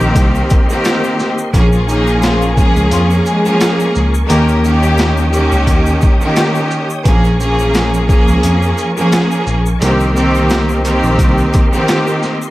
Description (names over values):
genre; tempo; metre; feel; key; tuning
hip hop, boom-bap hip-hop; 87 BPM; 4/4; swing 54% on 16ths; Bb dorian; A4 = 440 Hz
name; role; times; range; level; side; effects
bright studio string section; accompaniment; 0.0-12.4 s; Eb3 to Ab4; -14 LUFS; equal; cassette tape
tonewheel organ; sustained chords; 0.0-12.5 s; Bb4 to Eb6; -26 LUFS; left 1 dB; chorus vibrato, fast rotary speaker
mellow tine electric piano; bass; 0.0-11.5 s; Bb1 to F2; -15 LUFS; equal; medium stereo tremolo
tube shaker; percussion; 0.0-12.5 s; none; -34 LUFS; left 4 dB; none
boom bap sampler-style drum kit; drums; 0.2-12.4 s; hi-hat, kick drum, shaker, snare drum; -15 LUFS; equal; overdrive, vintage 12-bit sampler grit
warm studio string section; stabs; 1.7-5.3 s; Eb3 to Bb4; -18 LUFS; left 2 dB; tape echo
room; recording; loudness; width
light reverb; vinyl crackle; -10 LUFS; side -17 dB against mid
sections
0.0-12.5 A section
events
none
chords
0.0 Cm7; 1.5 Bbm7; 4.3 Eb7; 7.1 Bbm7; 9.8 Cm7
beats
0.16 0.85 | 1.54 2.23 2.92 3.61 | 4.30 4.99 5.68 6.37 | 7.06 7.75 8.44 9.13 | 9.81 10.51 11.20 11.88